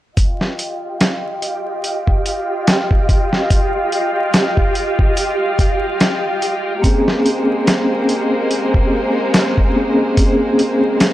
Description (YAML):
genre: trip hop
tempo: 72 BPM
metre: 4/4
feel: swing 56% on 16ths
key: F minor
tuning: A4 = 440 Hz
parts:
  - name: rich symphonic violin section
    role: sustained chords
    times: 0.2-11.1 s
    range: Ab3 to G5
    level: -21 LUFS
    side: equal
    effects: low-pass filter
  - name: dusty soul sampler-style drum kit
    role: drums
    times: 0.2-11.1 s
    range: hi-hat, kick drum, snare drum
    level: -15 LUFS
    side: equal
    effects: none
  - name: flickering grainy texture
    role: texture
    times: 0.9-11.1 s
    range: G4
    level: -24 LUFS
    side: right 1 dB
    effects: built-in reverb
  - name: vibraphone with soft mallets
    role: accompaniment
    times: 6.8-11.1 s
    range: Bb3 to Ab4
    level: -16 LUFS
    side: equal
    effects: tremolo, tape echo
room: small room ambience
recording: dry, gritty hardware recording, transformer saturation, vinyl crackle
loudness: -14 LUFS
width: side -14 dB against mid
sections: 0.2-11.1 A section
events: filter sweep on violin section 0.2-11.1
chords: 0.2 Fsus2; 6.8 Bbm9